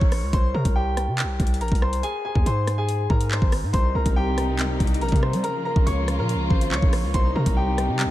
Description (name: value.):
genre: hip hop, drill.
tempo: 141 BPM.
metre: 4/4.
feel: half-time.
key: C phrygian.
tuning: A4 = 438 Hz.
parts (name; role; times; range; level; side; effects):
clear concert grand piano; melody; 0.0-8.1 s; G4 to Db6; -27 LUFS; left 1 dB; tape echo.
distorted 808-style bass; bass; 0.0-8.1 s; Ab1 to G3; -24 LUFS; equal; distortion.
drill drum kit; drums; 0.0-8.1 s; handclaps, hi-hat, kick drum, rim click; -23 LUFS; equal; none.
dark symphonic string section; sustained chords; 3.7-8.1 s; C3 to F4; -28 LUFS; left 1 dB; none.
room: light reverb, small room ambience.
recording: none.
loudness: -20 LUFS.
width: side -14 dB against mid.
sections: 0.0-8.1 A section.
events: none.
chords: 0.3 C5; 2.0 Ab; 3.7 Cm7; 5.4 Bbm; 7.1 Cm7.